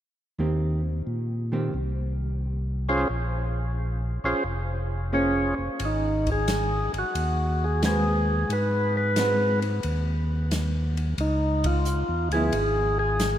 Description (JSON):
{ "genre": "soul jazz organ trio", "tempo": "89 BPM", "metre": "4/4", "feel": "swing 68% on 8ths", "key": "Ab major", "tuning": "A4 = 439 Hz", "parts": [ { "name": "vintage hollow-body jazz guitar", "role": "accompaniment", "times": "0.4-12.5 s", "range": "Eb3 to C5", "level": "-30 LUFS", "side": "right 2 dB", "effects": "none" }, { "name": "tonewheel organ", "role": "bass", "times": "0.4-13.4 s", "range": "F1 to Bb2", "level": "-26 LUFS", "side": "equal", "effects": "chorus vibrato" }, { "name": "percussive tonewheel organ", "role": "melody", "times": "2.9-13.4 s", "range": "Db4 to Db5", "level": "-26 LUFS", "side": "equal", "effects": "slow rotary speaker" }, { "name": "open jazz drum kit", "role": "drums", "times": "5.8-13.4 s", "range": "hi-hat, kick drum, ride cymbal, snare drum", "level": "-33 LUFS", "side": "left 1 dB", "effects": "none" } ], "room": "moderate cathedral reverb, RT60 4.9 s", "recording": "in a vast, echoing space", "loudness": "-23 LUFS", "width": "side -11 dB against mid", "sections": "0.4-5.8 A section; 5.8-13.4 B section", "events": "band accent 11.5-11.9", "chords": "0.4 Abmaj9/Eb (rootless); 3.1 Bbm9; 5.8 Ab7#9; 11.2 Db(#9)" }